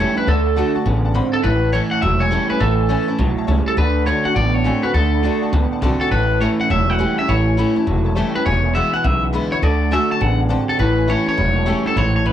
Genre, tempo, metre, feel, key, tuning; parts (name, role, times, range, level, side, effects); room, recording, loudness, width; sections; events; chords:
rock; 205 BPM; 4/4; swing 64% on 8ths; A major; A4 = 440 Hz
electric guitar at the edge of break-up; melody; 0.0-12.3 s; A4 to A5; -20 LUFS; equal; analog delay
clear upright piano; accompaniment; 0.0-12.3 s; B4 to B5; -29 LUFS; left 6 dB; plate reverb
picked steel-string acoustic guitar; accompaniment; 0.0-12.3 s; E2 to F#4; -25 LUFS; left 2 dB
electric guitar through a small old amp; riff; 0.0-12.3 s; E2 to C4; -22 LUFS; right 4 dB; phaser
upright bass; bass; 0.0-12.3 s; E1 to D2; -19 LUFS; equal
light reverb; -15 LUFS; side -10 dB against mid
0.0-12.3 A section
0.3 D; 1.4 A; 3.8 D; 6.1 A; 8.5 E; 9.6 D; 10.8 A